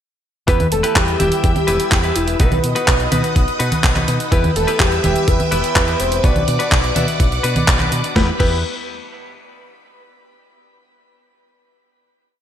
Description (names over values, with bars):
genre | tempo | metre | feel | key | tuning
italo disco | 125 BPM | 4/4 | straight | E minor | A4 = 441 Hz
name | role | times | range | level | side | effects
wide unison lead | melody | 0.5-8.6 s | E4 to D5 | -21 LUFS | equal | ping-pong delay, shimmer reverb
string machine, full ensemble | sustained chords | 0.5-8.4 s | E4 to E6 | -24 LUFS | equal | phaser, ensemble chorus, shimmer reverb
direct-recorded clean electric guitar | stabs | 0.5-8.6 s | B2 to E5 | -25 LUFS | left 3 dB | ping-pong delay, shimmer reverb
fingered electric bass with an envelope filter | bass | 0.5-8.6 s | E1 to B2 | -21 LUFS | equal | none
clean 12-bit digital drum machine | drums | 0.5-8.5 s | congas, crash cymbal, handclaps, hi-hat, snare drum | -20 LUFS | equal | small room ambience, gated reverb
electronic kick drum | drums | 0.5-8.5 s | none | -16 LUFS | equal | small room ambience
room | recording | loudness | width
moderate lush hall reverb, RT60 1.8 s | bright 1980s-style digital production | -14 LUFS | side -10 dB against mid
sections
0.5-8.2 verse; 8.2-10.1 final chord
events
none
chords
0.5 Em; 2.4 B; 4.3 Em; 6.2 Bm; 8.2 Em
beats
| 0.48 0.96 1.44 1.92 | 2.40 2.88 3.36 3.84 | 4.32 4.80 5.28 5.76 | 6.24 6.72 7.20 7.68 | 8.16